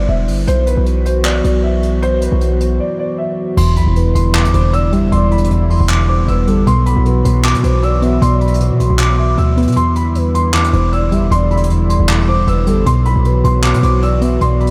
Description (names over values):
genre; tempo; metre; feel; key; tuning
hip hop, trap; 155 BPM; 4/4; half-time; E minor; A4 = 440 Hz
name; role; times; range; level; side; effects
dark concert grand piano; melody; 0.0-14.7 s; B4 to E6; -23 LUFS; equal; analog chorus, low-pass filter, analog delay
dark analog pad; sustained chords; 0.0-14.7 s; D3 to F#4; -23 LUFS; equal; subtle chorus
hard-hitting 808-style bass; bass; 0.0-14.7 s; D1 to B2; -18 LUFS; equal; none
soft brush drum kit; drums; 0.3-14.7 s; crash cymbal, handclaps, hi-hat; -26 LUFS; equal; none
soft electric-piano-like synth keys; accompaniment; 3.6-14.7 s; E2 to B3; -17 LUFS; equal; chorus, low-pass filter
gliding portamento lead; second line; 4.0-14.7 s; A4 to E5; -26 LUFS; equal; chorus, analog delay
room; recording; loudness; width
light reverb, small room ambience; none; -14 LUFS; mono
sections
0.0-3.6 A section; 3.6-14.7 B section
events
break 2.8-3.6; kick muted 9.8-10.5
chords
0.5 Bsus4; 3.6 Em7; 6.7 Bsus4; 9.8 Em7; 12.9 Bsus4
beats
0.09 | 0.47 0.86 1.25 1.64 | 2.02 2.41 2.80 3.19 | 3.57 3.96 4.35 4.73 | 5.12 5.51 5.89 6.28 | 6.67 7.06 7.44 7.83 | 8.22 8.60 8.99 9.38 | 9.77 10.15 10.54 10.93 | 11.31 11.70 12.09 12.47 | 12.86 13.25 13.64 14.02 | 14.41